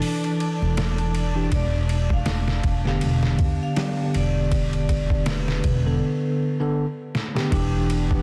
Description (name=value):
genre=trip hop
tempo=80 BPM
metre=4/4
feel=swing 57% on 16ths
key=E phrygian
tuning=A4 = 441 Hz
part: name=bell-like tine electric piano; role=accompaniment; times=0.0-8.2 s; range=D3 to A4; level=-27 LUFS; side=equal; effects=tremolo, tape echo
part: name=muted studio string section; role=sustained chords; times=0.0-8.2 s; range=D4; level=-38 LUFS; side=equal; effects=vintage 12-bit sampler grit
part: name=trip hop sampler-style drum kit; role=drums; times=0.0-8.2 s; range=hi-hat, kick drum, ride cymbal, snare drum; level=-28 LUFS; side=equal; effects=none
part: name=upright bass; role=bass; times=0.6-8.2 s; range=E1 to E2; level=-26 LUFS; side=equal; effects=none
part: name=vibraphone with medium hard mallets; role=melody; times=1.5-5.8 s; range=B4 to F5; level=-37 LUFS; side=equal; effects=tape echo
part: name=bowed-like drone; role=texture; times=7.9-8.2 s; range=B3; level=-41 LUFS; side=equal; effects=none
room=digital ambience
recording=dense, heavily limited modern master, vinyl crackle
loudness=-23 LUFS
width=mono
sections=0.0-7.5 A section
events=drum fill 7.2-7.5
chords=0.0 E7(no3); 1.5 Em7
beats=0.03 0.78 | 1.52 2.27 3.02 3.77 | 4.53 5.28 6.03 6.78 | 7.53